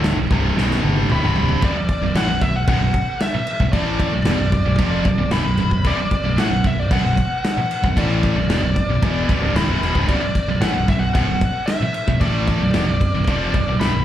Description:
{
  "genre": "heavy metal",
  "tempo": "113 BPM",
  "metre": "4/4",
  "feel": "straight",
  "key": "B minor",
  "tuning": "A4 = 443 Hz",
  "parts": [
    { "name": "distorted electric guitar", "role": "riff", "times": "0.0-14.0 s", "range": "B1 to A3", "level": "-26 LUFS", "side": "left 7 dB", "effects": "overdrive, slapback echo" },
    { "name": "scooped high-gain guitar", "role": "riff", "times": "0.0-14.0 s", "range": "B1 to A3", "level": "-24 LUFS", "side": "right 6 dB", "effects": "distortion, slapback echo" },
    { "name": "thick fuzz guitar", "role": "riff", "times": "0.0-14.0 s", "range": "B1 to A3", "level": "-26 LUFS", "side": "equal", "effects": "none" },
    { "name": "fingered electric bass", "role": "bass", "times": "0.0-14.0 s", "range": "B0 to A1", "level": "-22 LUFS", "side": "equal", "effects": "none" },
    { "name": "modern studio drum kit", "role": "drums", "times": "0.0-13.9 s", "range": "crash cymbal, kick drum, snare drum, toms", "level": "-22 LUFS", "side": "equal", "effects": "none" },
    { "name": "high-gain lead guitar", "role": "melody", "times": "1.1-14.0 s", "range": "D5 to B5", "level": "-24 LUFS", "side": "left 2 dB", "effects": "distortion, slapback echo" }
  ],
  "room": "light reverb",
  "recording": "live gig heard through the venue's PA, club reverb, vinyl crackle",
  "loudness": "-16 LUFS",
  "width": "side -11 dB against mid",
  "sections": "0.0-1.6 A section; 1.6-14.0 B section",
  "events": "drum fill 0.6-1.6",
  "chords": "0.0 Bm"
}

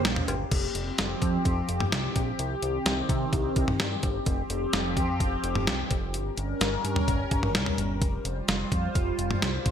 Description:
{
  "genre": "synth-pop",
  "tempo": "128 BPM",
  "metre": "4/4",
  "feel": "straight",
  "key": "unclear",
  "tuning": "A4 = 444 Hz",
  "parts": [
    { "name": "phased analog pad", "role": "sustained chords", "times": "0.0-9.7 s", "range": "Db3 to C5", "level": "-30 LUFS", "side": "equal", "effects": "phaser, chorus" },
    { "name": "fat analog bass", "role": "bass", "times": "0.0-9.7 s", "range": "F1 to C3", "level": "-32 LUFS", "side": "equal", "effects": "none" },
    { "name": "detuned 8-bit digital drum machine", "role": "drums", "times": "0.0-9.7 s", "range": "cowbell, crash cymbal, hi-hat, kick drum, snare drum, toms", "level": "-27 LUFS", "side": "equal", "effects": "gated reverb" }
  ],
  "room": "moderate plate reverb, RT60 1.7 s, digital ambience",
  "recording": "bright 1980s-style digital production",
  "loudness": "-25 LUFS",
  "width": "side -8 dB against mid",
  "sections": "0.5-9.7 A section",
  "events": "none",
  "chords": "0.0 Gdim; 0.5 Fsus2; 2.4 Cm; 4.3 Fsus2; 6.1 Gdim; 8.0 Fsus2"
}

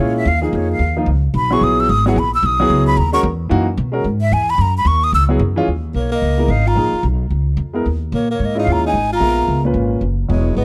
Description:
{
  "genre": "modal jazz",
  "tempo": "222 BPM",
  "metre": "4/4",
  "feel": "swing 61% on 8ths",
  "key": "Eb phrygian",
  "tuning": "A4 = 441 Hz",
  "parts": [
    { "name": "breathy hollow jazz flute", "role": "melody", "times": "0.0-10.6 s", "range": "Ab4 to Fb6", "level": "-21 LUFS", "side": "equal", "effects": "slapback echo" },
    { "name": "warm grand piano", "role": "accompaniment", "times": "0.0-10.6 s", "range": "Bb2 to Fb5", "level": "-21 LUFS", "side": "equal", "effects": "none" },
    { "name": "upright bass", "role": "bass", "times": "0.0-10.6 s", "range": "Fb1 to Cb3", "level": "-20 LUFS", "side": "equal", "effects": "none" },
    { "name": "clear tenor saxophone", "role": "second line", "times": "5.9-10.6 s", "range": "Ab3 to F4", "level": "-23 LUFS", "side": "equal", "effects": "none" }
  ],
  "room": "small room ambience",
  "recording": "dry, close 1970s-style studio recording",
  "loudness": "-16 LUFS",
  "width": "mono",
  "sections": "0.0-5.7 A section; 5.7-10.6 B section",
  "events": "flute solo 0.0-5.7",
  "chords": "0.0 Eb9sus4; 1.3 Gb9sus4; 5.7 Eb9sus4; 10.0 Gb9sus4"
}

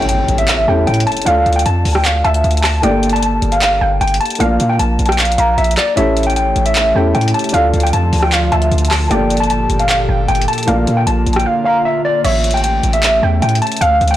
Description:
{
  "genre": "hip hop, trap",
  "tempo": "153 BPM",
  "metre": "4/4",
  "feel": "half-time",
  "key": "unclear",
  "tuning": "A4 = 440 Hz",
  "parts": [
    { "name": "mellow electric guitar", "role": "melody", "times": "0.0-14.2 s", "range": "D5 to A5", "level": "-17 LUFS", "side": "left 1 dB", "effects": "warbly pitch drift" },
    { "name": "warbly dusty pluck", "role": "second line", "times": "0.0-14.2 s", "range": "C#5 to Bb5", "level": "-20 LUFS", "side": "right 3 dB", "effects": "chorus, tape echo" },
    { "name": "felt-muted upright piano", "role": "accompaniment", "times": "0.0-12.3 s", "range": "Bb3 to Bb4", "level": "-20 LUFS", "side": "left 1 dB", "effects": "none" },
    { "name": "hard-hitting 808-style bass", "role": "bass", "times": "0.0-14.2 s", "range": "G1 to Bb2", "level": "-16 LUFS", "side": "equal", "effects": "tube saturation" },
    { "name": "trap drum kit", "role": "drums", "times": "0.0-14.2 s", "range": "crash cymbal, handclaps, hi-hat, rim click", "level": "-20 LUFS", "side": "equal", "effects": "none" },
    { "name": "impact", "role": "sound effects", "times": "0.0-1.3 s", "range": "none", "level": "-26 LUFS", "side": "equal", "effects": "none" },
    { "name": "airy breathy pad", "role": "sustained chords", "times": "6.3-14.2 s", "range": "Bb2 to A4", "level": "-23 LUFS", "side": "equal", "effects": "chorus" }
  ],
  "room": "moderate studio reverb, RT60 0.6 s",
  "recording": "blown-out, overdriven recording, overdrive",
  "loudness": "-12 LUFS",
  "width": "side -13 dB against mid",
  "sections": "0.0-12.2 A section; 12.2-14.2 A section",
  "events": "impact 0.0-1.3; drums muted 11.5-12.2",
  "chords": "0.0 A7; 1.3 Dm; 2.8 Gmadd9; 4.4 Bb; 6.0 A7; 7.5 Dm; 9.1 Gmadd9; 10.7 Bb; 12.2 A7"
}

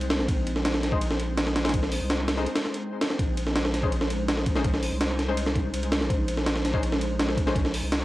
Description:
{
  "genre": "drum and bass, jungle",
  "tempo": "165 BPM",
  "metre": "4/4",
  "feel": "straight",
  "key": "Bb minor",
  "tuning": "A4 = 439 Hz",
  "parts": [
    { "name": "ethereal airy pad", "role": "sustained chords", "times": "0.0-8.0 s", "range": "Ab3 to C5", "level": "-32 LUFS", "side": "equal", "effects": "ensemble chorus, built-in reverb, cassette tape" },
    { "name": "saturated sub bass", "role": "bass", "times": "0.0-8.0 s", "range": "Bb1 to C2", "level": "-30 LUFS", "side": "equal", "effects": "none" },
    { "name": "breakbeat sampler-style drum kit", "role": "drums", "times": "0.0-8.0 s", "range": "hi-hat, kick drum, ride cymbal, snare drum", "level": "-26 LUFS", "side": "equal", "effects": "none" },
    { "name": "orchestra-hit-like synth stab", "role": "stabs", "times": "0.9-7.5 s", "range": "Ab3 to C5", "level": "-34 LUFS", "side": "left 4 dB", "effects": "built-in reverb, cassette tape, dub echo" }
  ],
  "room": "moderate studio reverb, RT60 0.6 s",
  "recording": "home recording on cassette",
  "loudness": "-23 LUFS",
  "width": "side -17 dB against mid",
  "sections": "0.0-8.0 A section",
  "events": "break 2.5-3.2",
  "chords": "0.0 Ab/Bb; 3.2 Bbm11"
}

